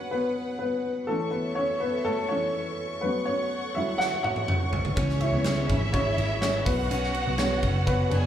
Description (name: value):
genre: piano-driven pop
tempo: 124 BPM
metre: 4/4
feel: straight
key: unclear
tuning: A4 = 442 Hz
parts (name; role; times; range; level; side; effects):
- dark upright piano; accompaniment; 0.0-8.3 s; E3 to F#5; -27 LUFS; left 1 dB; none
- warm studio string section; sustained chords; 0.0-8.3 s; G#4 to C#6; -35 LUFS; left 1 dB; none
- huge arena drum kit; drums; 4.0-8.2 s; hi-hat, kick drum, ride cymbal, snare drum, toms; -29 LUFS; equal; none
- warm studio violin section; second line; 5.0-8.3 s; C#4 to G#5; -31 LUFS; equal; digital delay, slapback echo
- fingerpicked plugged-in steel-string acoustic guitar; riff; 5.0-8.2 s; B3 to E4; -36 LUFS; right 6 dB; slapback echo
- vintage muted picked electric bass; bass; 5.0-8.3 s; F#1 to C#2; -27 LUFS; equal; none
room: light reverb, small room ambience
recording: live gig heard through the venue's PA, club reverb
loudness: -24 LUFS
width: side -10 dB against mid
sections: 0.0-8.3 A section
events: upright piano solo 0.0-8.3; drum fill 4.0-5.0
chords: 0.0 Bm; 1.1 A; 3.0 F#m; 5.0 C#m; 6.7 Bm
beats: 0.13 0.62 | 1.10 1.58 2.07 2.55 | 3.04 3.52 4.00 4.49 | 4.97 5.45 5.94 6.42 | 6.91 7.39 7.87